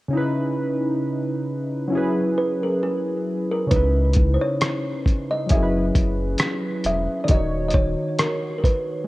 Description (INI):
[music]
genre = lo-fi hip hop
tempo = 67 BPM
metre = 4/4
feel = swing 56% on 16ths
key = C# dorian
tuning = A4 = 440 Hz
[part]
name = warm analog keys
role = accompaniment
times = 0.1-9.1 s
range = C#3 to C#5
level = -24 LUFS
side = equal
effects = chorus, cassette tape, low-pass filter
[part]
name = kalimba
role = melody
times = 2.4-9.1 s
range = G#4 to E5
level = -25 LUFS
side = right 1 dB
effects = low-pass filter, tape echo
[part]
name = warm sub bass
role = bass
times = 3.7-8.0 s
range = D#1 to C#2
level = -23 LUFS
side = equal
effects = none
[part]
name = lo-fi sampler-style drum kit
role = drums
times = 3.7-8.9 s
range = hi-hat, kick drum, rim click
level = -20 LUFS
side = equal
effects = overdrive
[sound]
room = light reverb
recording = worn, warbling old tape, cassette tape, warbly pitch drift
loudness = -20 LUFS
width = side -18 dB against mid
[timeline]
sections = 0.1-3.7 A section; 3.7-9.1 B section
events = none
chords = 0.1 C#m9; 1.9 F#7sus4; 3.7 C#m9; 5.5 F#7sus4; 7.3 D#m7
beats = | 0.13 1.02 1.92 2.82 | 3.71 4.61 5.50 6.40 | 7.29 8.19